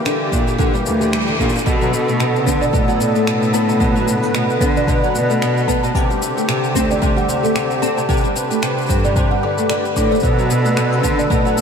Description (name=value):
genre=folktronica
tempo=112 BPM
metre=4/4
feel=swing 56% on 16ths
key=unclear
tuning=A4 = 440 Hz
part: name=musette accordion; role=sustained chords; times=0.0-11.6 s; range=D3 to B4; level=-22 LUFS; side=equal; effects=none
part: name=nylon-string guitar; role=arpeggios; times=0.0-11.6 s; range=B2 to D4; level=-20 LUFS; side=equal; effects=analog chorus, ping-pong delay
part: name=electronic finger snaps and shaker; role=drums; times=0.1-11.6 s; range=none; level=-27 LUFS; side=left 1 dB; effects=overdrive
part: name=rich cello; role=bass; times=0.3-11.6 s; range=D2 to D3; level=-20 LUFS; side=equal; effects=none
part: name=electronic kick drum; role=drums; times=0.3-11.4 s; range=none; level=-20 LUFS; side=equal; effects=overdrive
part: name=music box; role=second line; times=2.6-11.5 s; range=C5 to D6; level=-23 LUFS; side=equal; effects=ping-pong delay
room=moderate huge ambient reverb, RT60 4.4 s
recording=dreamy mix soaked in reverb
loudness=-14 LUFS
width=side -6 dB against mid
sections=0.0-1.7 A section; 1.7-11.6 B section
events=band accent 1.1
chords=0.0 Gm6; 1.7 Bm7; 5.9 D7sus4; 10.2 Bm7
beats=0.06 0.59 1.13 | 1.66 2.20 2.73 3.27 | 3.81 4.34 4.88 5.41 | 5.95 6.49 7.02 7.56 | 8.09 8.63 9.16 9.70 | 10.23 10.77 11.31